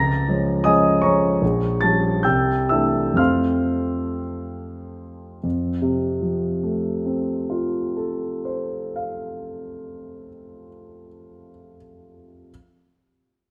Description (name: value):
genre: classical, romantic character piece for solo piano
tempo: 49-81 BPM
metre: 2/4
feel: rubato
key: F major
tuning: A4 = 441 Hz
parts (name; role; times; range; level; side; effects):
- warm concert grand piano; solo; 0.0-12.5 s; Bb1 to Bb6; -22 LUFS; equal; none
room: moderate scoring stage reverb, RT60 1.9 s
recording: none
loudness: -22 LUFS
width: mono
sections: 0.0-5.4 A section; 5.4-10.3 B section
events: slowing down 0.7-5.4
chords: 0.0 Db; 1.4 Gm7b5/Bb; 2.2 C69; 3.2 F